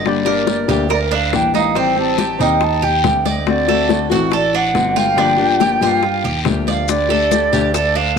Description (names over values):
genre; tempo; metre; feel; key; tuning
latin, Cuban son and guajira; 141 BPM; 4/4; straight; G minor; A4 = 440 Hz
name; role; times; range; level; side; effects
concert flute; melody; 0.0-8.2 s; D5 to A5; -18 LUFS; right 1 dB; none
nylon-string guitar; accompaniment; 0.0-8.2 s; D3 to G4; -20 LUFS; left 8 dB; none
Cuban tres; arpeggios; 0.0-8.2 s; C4 to D5; -21 LUFS; right 11 dB; none
dark concert grand piano; bass; 0.0-8.2 s; G1 to G2; -22 LUFS; equal; none
bongos; percussion; 0.1-8.2 s; none; -25 LUFS; left 10 dB; none
congas; percussion; 0.1-8.2 s; none; -25 LUFS; left 10 dB; none
guiro; percussion; 0.1-8.2 s; none; -29 LUFS; left 11 dB; none
maracas; percussion; 6.9-8.0 s; none; -29 LUFS; left 11 dB; none
room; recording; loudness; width
moderate echo chamber reverb, RT60 1.5 s, small room ambience; 1960s-style stereo with parts hard left and right; -13 LUFS; side -6 dB against mid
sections
0.0-8.2 A section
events
none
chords
0.1 Gm; 1.8 Am7b5; 3.5 D7; 5.2 Gm7; 6.9 Dsus4